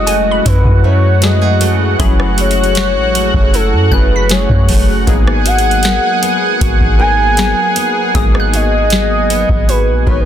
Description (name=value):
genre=contemporary R&B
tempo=78 BPM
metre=4/4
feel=straight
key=G# phrygian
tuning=A4 = 440 Hz
part: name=gliding portamento lead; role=melody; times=0.0-10.3 s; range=A4 to G#5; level=-17 LUFS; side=equal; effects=chorus, ping-pong delay
part: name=warm analog keys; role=accompaniment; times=0.0-10.3 s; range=F#3 to B4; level=-19 LUFS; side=left 5 dB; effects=chorus
part: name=lush unison pad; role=sustained chords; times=0.0-10.3 s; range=F#4 to F#6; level=-19 LUFS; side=right 2 dB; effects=chorus, sidechain pumping
part: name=nylon-string guitar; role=arpeggios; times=0.0-10.3 s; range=F#3 to A#4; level=-23 LUFS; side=right 9 dB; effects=ping-pong delay
part: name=soft 808-style bass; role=bass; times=0.0-10.3 s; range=F#1 to F#2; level=-14 LUFS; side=equal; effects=none
part: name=glassy wavetable pluck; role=texture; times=0.0-10.3 s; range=F#5 to B6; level=-26 LUFS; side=left 1 dB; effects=chorus, ping-pong delay
part: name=booming analog drum machine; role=drums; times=0.1-10.3 s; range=hi-hat, kick drum, rim click, snare drum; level=-15 LUFS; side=equal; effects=none
room=digital ambience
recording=dense, heavily limited modern master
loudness=-9 LUFS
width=side -10 dB against mid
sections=0.0-10.3 A section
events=none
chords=0.0 F#m9; 5.1 G#m9